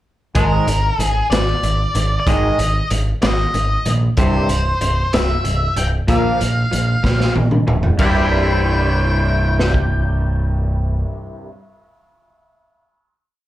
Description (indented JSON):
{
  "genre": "quiet-loud alternative rock",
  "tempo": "63 BPM (dotted quarters)",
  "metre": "6/8",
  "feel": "straight",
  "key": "unclear",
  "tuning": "A4 = 439 Hz",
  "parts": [
    { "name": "octave-fuzz lead guitar", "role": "melody", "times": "0.4-11.0 s", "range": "Bb4 to G5", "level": "-22 LUFS", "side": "equal", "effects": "distortion, slapback echo" },
    { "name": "twangy electric guitar", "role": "arpeggios", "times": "0.4-11.5 s", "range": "C2 to E4", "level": "-22 LUFS", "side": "equal", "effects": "ensemble chorus, slapback echo" },
    { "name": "growling fingered electric bass", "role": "bass", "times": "0.4-11.0 s", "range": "C1 to Bb1", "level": "-18 LUFS", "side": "equal", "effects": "overdrive" },
    { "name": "raw garage drum kit", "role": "drums", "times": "0.4-9.9 s", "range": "crash cymbal, hi-hat, kick drum, snare drum, toms", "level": "-20 LUFS", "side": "equal", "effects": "none" }
  ],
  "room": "little or no reverb",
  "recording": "live gig heard through the venue's PA, club reverb",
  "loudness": "-15 LUFS",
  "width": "side -14 dB against mid",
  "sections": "0.4-8.0 verse; 8.0-11.8 final chord",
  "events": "drum fill 7.0-8.0",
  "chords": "0.4 Absus2; 4.2 C; 6.1 Bb5; 8.0 C",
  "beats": "| 0.36 1.31 | 2.27 3.22 | 4.18 5.13 | 6.08 7.04 | 7.99 8.95 | 9.90 10.86"
}